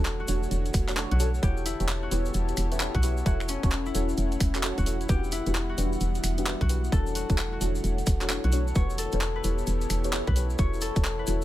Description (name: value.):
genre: UK garage, two-step garage.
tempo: 131 BPM.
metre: 4/4.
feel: swing 63% on 16ths.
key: unclear.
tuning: A4 = 441 Hz.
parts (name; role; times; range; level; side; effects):
concert harp; melody; 0.0-11.4 s; C#4 to C#5; -35 LUFS; left 4 dB; none.
airy breathy pad; sustained chords; 0.1-11.4 s; G3 to F#5; -39 LUFS; left 1 dB; chorus, vintage 12-bit sampler grit, sidechain pumping.
deep mellow chord stab; stabs; 0.0-11.4 s; D4 to C#5; -35 LUFS; equal; chorus, phaser.
hollow knocking FM bass; bass; 0.0-11.4 s; E1 to B1; -28 LUFS; equal; none.
deep dark ambient pad; texture; 0.1-11.4 s; D3 to G5; -38 LUFS; left 2 dB; chorus, built-in reverb, sidechain pumping.
garage drum kit; drums; 0.1-11.4 s; finger snaps, handclaps, hi-hat; -32 LUFS; right 1 dB; overdrive, studio reverb.
tube shaker; percussion; 0.1-11.4 s; none; -40 LUFS; left 3 dB; none.
electronic kick drum; drums; 0.7-11.0 s; none; -25 LUFS; equal; studio reverb.
room: little or no reverb.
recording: none.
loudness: -24 LUFS.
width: side -14 dB against mid.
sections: 0.0-11.4 A section.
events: none.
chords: 0.0 Bm7/E; 1.4 A7/E; 3.3 F#m7/E; 5.1 Em9; 6.9 Bm7/E; 8.8 A7/E; 10.6 F#m7/E.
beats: 0.05 0.51 0.97 | 1.43 1.89 2.34 2.80 | 3.26 3.72 4.17 4.63 | 5.09 5.55 6.01 6.46 | 6.92 7.38 7.84 8.30 | 8.76 9.21 9.67 10.13 | 10.59 11.05.